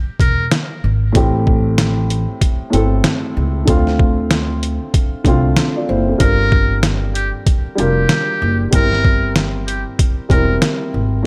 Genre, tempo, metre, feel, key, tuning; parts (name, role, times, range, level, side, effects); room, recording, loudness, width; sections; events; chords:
hip hop, boom-bap hip-hop; 95 BPM; 4/4; swing 59% on 16ths; A4 = 440 Hz
trumpet with metal mute; melody; 0.2-0.5, 6.2-10.6 s; G4 to Bb4; -24 LUFS; equal; high-pass filter, low-pass filter, delay
upright bass; bass; 0.2-11.2 s; E1 to D2; -20 LUFS; equal
trip hop sampler-style drum kit; drums; 0.2-10.8 s; hi-hat, kick drum, snare drum; -18 LUFS; equal
dark upright piano; accompaniment; 1.1-11.3 s; A2 to D5; -22 LUFS; equal; cassette tape, high-pass filter, low-pass filter
studio reverb; -16 LUFS; mono
0.0-11.3 A section
break 0.0-1.1
0.0 E(b5, no3); 1.1 Am7; 3.7 Dm7; 6.2 Gm7; 8.7 C7/G